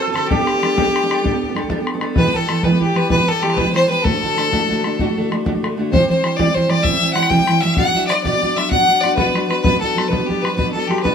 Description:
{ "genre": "celtic folk, Celtic slide", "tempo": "128 BPM (dotted quarters)", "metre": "12/8", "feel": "straight", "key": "E minor", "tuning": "A4 = 445 Hz", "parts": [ { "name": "bright fiddle", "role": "melody", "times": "0.0-11.1 s", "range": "G4 to G5", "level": "-18 LUFS", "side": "left 1 dB", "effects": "none" }, { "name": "mandolin", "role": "second line", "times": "0.0-1.8 s", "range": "G4 to A4", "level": "-26 LUFS", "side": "right 6 dB", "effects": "none" }, { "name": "rich fiddle", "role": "second line", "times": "0.0-11.1 s", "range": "G4 to G5", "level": "-24 LUFS", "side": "left 5 dB", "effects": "none" }, { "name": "fingerpicked steel-string acoustic guitar", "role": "accompaniment", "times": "0.0-11.1 s", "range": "E2 to A4", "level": "-19 LUFS", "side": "right 2 dB", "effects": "none" }, { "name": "bodhran", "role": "percussion", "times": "0.2-11.1 s", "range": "none", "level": "-23 LUFS", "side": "left 2 dB", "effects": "none" } ], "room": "light reverb", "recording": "minimal, uncompressed stereo recording", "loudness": "-15 LUFS", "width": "side -7 dB against mid", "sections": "0.0-2.2 A section; 2.2-11.1 B section", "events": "none", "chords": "0.3 Gadd9; 2.2 Em; 4.0 D; 5.9 C; 7.8 Bm" }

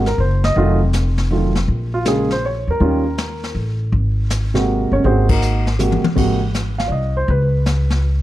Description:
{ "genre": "jazz piano trio", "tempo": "161 BPM", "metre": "3/4", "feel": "swing 66% on 8ths", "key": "Ab mixolydian", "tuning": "A4 = 440 Hz", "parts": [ { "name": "warm baby grand piano", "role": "melody", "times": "0.0-8.0 s", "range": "C3 to F5", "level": "-19 LUFS", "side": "right 2 dB", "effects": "plate reverb" }, { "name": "upright bass", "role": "bass", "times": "0.0-8.2 s", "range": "F1 to Fb2", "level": "-18 LUFS", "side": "equal", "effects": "none" }, { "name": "jazz brush drum kit", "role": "drums", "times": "0.1-8.2 s", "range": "brushed snare drum, crash cymbal, hi-hat, kick drum, ride cymbal, snare drum, toms", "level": "-22 LUFS", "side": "left 2 dB", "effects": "none" } ], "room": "light reverb", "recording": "dark, warm production", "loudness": "-15 LUFS", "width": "side -14 dB against mid", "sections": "0.0-6.2 A section; 6.2-8.2 A section", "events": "band accent 5.2; drum fill 5.8-6.2", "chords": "0.0 Ab9; 0.6 F7b9; 1.7 Bbm7; 2.8 Eb5; 3.9 Ab9; 6.2 Ab; 7.3 Db5" }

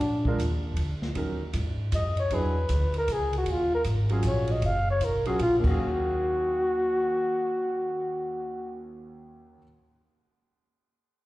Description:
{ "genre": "jazz, small-group swing and bop", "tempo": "156 BPM", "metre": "3/4", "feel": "swing 64% on 8ths", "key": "Eb minor", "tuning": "A4 = 440 Hz", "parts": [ { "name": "breathy flugelhorn", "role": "melody", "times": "0.0-8.9 s", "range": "D4 to F5", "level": "-27 LUFS", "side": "left 1 dB", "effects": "slapback echo" }, { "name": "upright bass", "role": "bass", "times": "0.0-9.5 s", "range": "Gb1 to Ab2", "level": "-28 LUFS", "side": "equal", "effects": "none" }, { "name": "open jazz drum kit", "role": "drums", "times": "0.0-5.7 s", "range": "crash cymbal, hi-hat, kick drum, ride cymbal, snare drum", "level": "-35 LUFS", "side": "right 1 dB", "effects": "none" }, { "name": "warm concert grand piano", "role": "accompaniment", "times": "0.3-9.6 s", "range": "Eb2 to F5", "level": "-34 LUFS", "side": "right 2 dB", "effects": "slapback echo" } ], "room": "light reverb, small room ambience", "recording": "live gig heard through the venue's PA, club reverb", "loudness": "-24 LUFS", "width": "side -17 dB against mid", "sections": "0.0-5.8 A section; 5.8-8.1 B section", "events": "none", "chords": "0.0 Bb; 1.2 Ebm7; 2.3 E9; 3.5 Ebm11" }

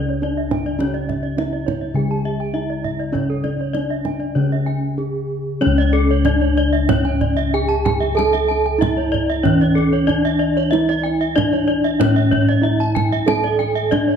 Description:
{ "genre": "Balinese gamelan", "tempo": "94-105 BPM", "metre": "4/4", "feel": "straight", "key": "C# pelog", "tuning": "A4 = 441 Hz", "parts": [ { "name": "gamelan-type bronze metallophone", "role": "melody", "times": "0.0-14.2 s", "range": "C#4 to A4-40c", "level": "-20 LUFS", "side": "right 1 dB", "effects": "none" }, { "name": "gamelan-type bronze metallophone", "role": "accompaniment", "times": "0.0-5.6 s", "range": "C#3 to G#3-45c", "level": "-28 LUFS", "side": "right 1 dB", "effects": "none" }, { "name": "gamelan-type bronze metallophone", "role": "arpeggios", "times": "0.0-14.1 s", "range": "A4-40c to A5-40c", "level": "-25 LUFS", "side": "left 5 dB", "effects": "none" }, { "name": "gamelan-type bossed gongs", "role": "bass", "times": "0.0-14.2 s", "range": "C#2 to A4-40c", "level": "-21 LUFS", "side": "left 1 dB", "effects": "none" }, { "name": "gamelan-type bronze metallophone", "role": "arpeggios", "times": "0.1-14.2 s", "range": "A4-40c to A5-40c", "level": "-27 LUFS", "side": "right 7 dB", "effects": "none" }, { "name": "kendang", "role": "percussion", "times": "0.2-14.1 s", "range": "none", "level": "-25 LUFS", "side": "right 5 dB", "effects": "none" } ], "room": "moderate recital hall reverb, RT60 1.8 s", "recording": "dark, warm production", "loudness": "-16 LUFS", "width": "side -7 dB against mid", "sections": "0.0-5.6 A section; 5.6-14.2 B section", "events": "break 4.7-5.6; drum fill 5.0-5.6", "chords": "none" }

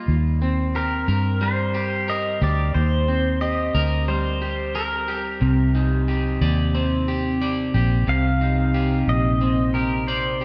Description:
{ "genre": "dream pop", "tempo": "90 BPM", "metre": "4/4", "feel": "straight", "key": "Eb major", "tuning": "A4 = 440 Hz", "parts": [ { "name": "electric guitar at the edge of break-up", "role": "arpeggios", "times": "0.0-10.4 s", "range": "C3 to D5", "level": "-26 LUFS", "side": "equal", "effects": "lush chorus, delay" }, { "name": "vintage muted fingered electric bass", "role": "bass", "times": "0.1-10.4 s", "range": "Bb1 to G2", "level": "-24 LUFS", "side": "equal", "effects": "none" }, { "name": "pedal steel guitar", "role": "melody", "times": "0.8-10.4 s", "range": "Bb4 to F5", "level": "-28 LUFS", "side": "equal", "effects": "subtle chorus, delay" } ], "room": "moderate plate reverb, RT60 2.8 s", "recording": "dreamy mix soaked in reverb", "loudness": "-22 LUFS", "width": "mono", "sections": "0.1-10.4 A section", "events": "none", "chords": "0.1 Eb6; 5.4 Cmadd9" }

